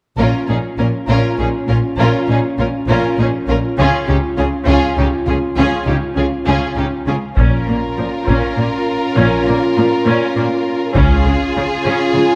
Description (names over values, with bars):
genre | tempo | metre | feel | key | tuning
cinematic, epic orchestral film score | 100 BPM | 3/4 | straight | Bb minor | A4 = 440 Hz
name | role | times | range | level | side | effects
warm symphonic violin section | melody | 0.2-12.4 s | G4 to Bb4 | -25 LUFS | equal | none
clear chamber violin section | second line | 0.2-12.4 s | Eb4 to F4 | -28 LUFS | equal | none
rich symphonic viola section | accompaniment | 0.2-12.2 s | F3 to Db4 | -24 LUFS | equal | none
dark French horn section | sustained chords | 0.2-12.4 s | Db4 to F4 | -22 LUFS | equal | none
clear symphonic cello section | bass | 0.2-12.2 s | Bb2 to Db3 | -23 LUFS | equal | none
rich symphonic double bass section | bass | 0.2-11.2 s | Bb1 to Db2 | -21 LUFS | equal | none
taiko ensemble | drums | 7.4-12.1 s | none | -20 LUFS | equal | none
room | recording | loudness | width
moderate scoring stage reverb, RT60 1.9 s | dark, warm production | -16 LUFS | mono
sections
0.2-7.4 A section; 7.4-12.4 B section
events
none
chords
0.2 Bbm; 3.8 Db; 7.4 Bbm; 11.0 Db